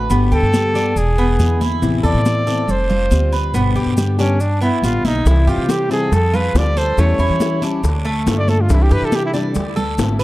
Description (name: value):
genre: latin, Cuban son and guajira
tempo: 140 BPM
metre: 4/4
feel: straight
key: C major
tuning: A4 = 442 Hz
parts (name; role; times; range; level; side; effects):
- fingerpicked plugged-in steel-string acoustic guitar; accompaniment; 0.0-10.2 s; B2 to G4; -22 LUFS; left 3 dB; none
- Cuban tres; arpeggios; 0.0-10.2 s; A3 to D5; -24 LUFS; right 2 dB; none
- upright bass; bass; 0.0-10.2 s; E1 to E3; -17 LUFS; equal; none
- congas; percussion; 0.1-10.2 s; none; -23 LUFS; equal; none
- guiro; percussion; 0.1-10.2 s; none; -35 LUFS; right 5 dB; none
- maracas; percussion; 0.1-10.2 s; none; -37 LUFS; left 2 dB; none
- breathy trumpet; melody; 0.3-9.3 s; Db4 to D5; -21 LUFS; equal; tape echo
- bongos; percussion; 5.3-10.2 s; none; -28 LUFS; left 6 dB; none
room: light reverb, small room reverb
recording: dark, warm production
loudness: -14 LUFS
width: side -17 dB against mid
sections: 0.0-10.2 A section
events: trumpet solo 0.0-10.2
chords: 0.1 Gadd9; 1.0 E7; 1.8 Amadd9; 2.7 Fadd9; 3.5 G; 5.3 C; 6.1 Fadd9; 7.0 A7/E; 7.8 Dm; 8.7 Cadd9; 9.6 Dm7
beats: | 0.11 0.54 0.97 1.40 | 1.82 2.25 2.68 3.11 | 3.54 3.97 4.40 4.83 | 5.26 5.69 6.12 6.55 | 6.98 7.41 7.84 8.27 | 8.70 9.13 9.56 9.99